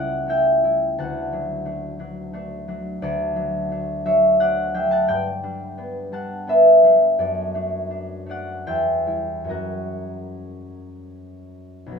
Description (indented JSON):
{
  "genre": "classical, solo harp piece",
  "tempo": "64-90 BPM",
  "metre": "3/4",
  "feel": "rubato",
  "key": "D major",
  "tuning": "A4 = 440 Hz",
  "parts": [
    { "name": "concert harp", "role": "solo", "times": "0.0-12.0 s", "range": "B1 to A5", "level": "-19 LUFS", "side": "equal", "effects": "none" }
  ],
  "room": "light reverb",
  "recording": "minimal, uncompressed stereo recording",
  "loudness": "-18 LUFS",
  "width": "side -6 dB against mid",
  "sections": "0.0-12.0 A section",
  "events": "none",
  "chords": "0.0 A7/C#; 1.0 D; 5.1 G; 7.2 D/F#; 8.7 Em; 9.5 F#"
}